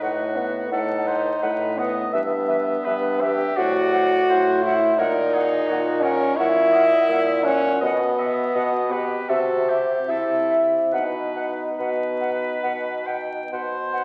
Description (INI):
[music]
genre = classical, slow romantic movement for wind quintet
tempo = 65-88 BPM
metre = 4/4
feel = rubato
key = unclear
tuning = A4 = 440 Hz
[part]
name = silver concert flute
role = melody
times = 0.0-14.0 s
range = E5 to F#5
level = -31 LUFS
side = equal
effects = none
[part]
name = clear oboe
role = second line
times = 0.0-14.0 s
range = F#4 to G5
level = -33 LUFS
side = equal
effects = none
[part]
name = warm French horn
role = accompaniment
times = 0.0-13.9 s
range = B3 to G4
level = -24 LUFS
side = equal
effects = none
[part]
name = warm clarinet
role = accompaniment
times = 0.0-14.0 s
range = B4 to E5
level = -37 LUFS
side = equal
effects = none
[part]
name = mellow bassoon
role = bass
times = 0.0-14.0 s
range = G2 to C3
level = -28 LUFS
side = equal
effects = none
[sound]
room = wet recital hall reverb, RT60 1.4 s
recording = very old 78 rpm record, vinyl crackle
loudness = -22 LUFS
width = mono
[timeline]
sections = 0.0-14.0 A section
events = none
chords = 0.0 B7/A; 2.1 Em/G; 3.6 F#dim/A; 5.0 F#7/A#; 7.8 B; 9.3 C; 10.9 B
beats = 0.02 0.71 1.42 | 2.14 2.86 3.57 4.29 | 4.99 5.69 6.38 7.09 | 7.83 8.56 9.30 10.09 | 10.93 11.79 12.63 13.52